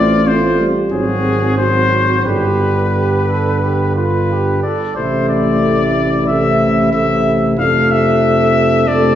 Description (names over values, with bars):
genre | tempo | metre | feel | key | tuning
classical, brass quintet | 91 BPM | 4/4 | rubato | unclear | A4 = 440 Hz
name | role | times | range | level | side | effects
bright trumpet | melody | 0.0-9.2 s | Ab4 to F5 | -17 LUFS | left 3 dB | none
warm flugelhorn | second line | 0.0-9.2 s | D4 to A4 | -21 LUFS | right 3 dB | none
dark French horn | accompaniment | 0.0-9.2 s | A3 to D4 | -20 LUFS | left 2 dB | none
mellow euphonium | accompaniment | 0.0-9.2 s | C3 to A3 | -21 LUFS | right 2 dB | none
warm bass trombone | bass | 0.0-9.2 s | G1 to F2 | -17 LUFS | right 1 dB | none
room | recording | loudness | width
wet recital hall reverb, RT60 1.8 s | heard from further back in the room, nothing above 7.8 kHz | -12 LUFS | side -10 dB against mid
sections
0.0-9.2 A section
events
none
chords
0.0 F/A; 0.9 Ab7; 2.2 G; 5.0 Am; 7.6 Dm7/F